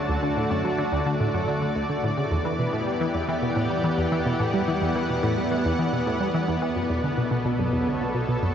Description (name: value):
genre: ambient, sequencer-driven space music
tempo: 108 BPM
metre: 4/4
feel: straight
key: E minor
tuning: A4 = 437 Hz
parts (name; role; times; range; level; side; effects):
- lush unison pad; sustained chords; 0.0-8.5 s; B2 to A5; -25 LUFS; equal; chorus
- fat analog bass; bass; 0.0-8.5 s; B1 to E2; -42 LUFS; equal; none
- bubbling stepped-filter texture; texture; 0.0-8.5 s; none; barely audible; none; none
- tight sequenced synth; riff; 0.1-8.5 s; D2 to G3; -26 LUFS; equal; chorus, analog delay
room: wet lush hall reverb, RT60 2.6 s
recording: dark, warm production, nothing above 7.6 kHz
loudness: -22 LUFS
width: side -8 dB against mid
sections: 0.0-8.5 A section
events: none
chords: 0.0 D; 2.3 Em7; 6.8 Bm7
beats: | 0.09 0.65 1.20 1.76 | 2.31 2.87 3.42 3.98 | 4.54 5.09 5.65 6.20 | 6.76 7.31 7.87 8.43